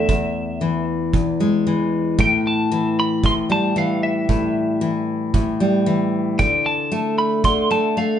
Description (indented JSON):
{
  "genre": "acoustic pop",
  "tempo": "114 BPM",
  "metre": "4/4",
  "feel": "swing 55% on 16ths",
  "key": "unclear",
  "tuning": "A4 = 440 Hz",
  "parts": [
    { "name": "twelve-string electric guitar", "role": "melody", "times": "0.0-8.2 s", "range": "E5 to C6", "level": "-22 LUFS", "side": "equal", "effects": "none" },
    { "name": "picked steel-string acoustic guitar", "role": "accompaniment", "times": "0.0-8.2 s", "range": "E2 to A3", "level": "-19 LUFS", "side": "left 1 dB", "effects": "none" },
    { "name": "kick drum", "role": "drums", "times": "0.1-7.6 s", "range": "none", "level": "-21 LUFS", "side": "right 2 dB", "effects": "none" }
  ],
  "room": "wet studio reverb, RT60 0.7 s",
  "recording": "band playing live in one room, nothing above 10.8 kHz",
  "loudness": "-17 LUFS",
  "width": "side -9 dB against mid",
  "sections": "0.0-8.2 A section",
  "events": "none",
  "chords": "0.0 E; 2.2 A5; 6.4 D5",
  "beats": "| 0.09 0.61 1.14 1.66 | 2.19 2.71 3.24 3.77 | 4.29 4.82 5.34 5.87 | 6.39 6.92 7.44 7.97"
}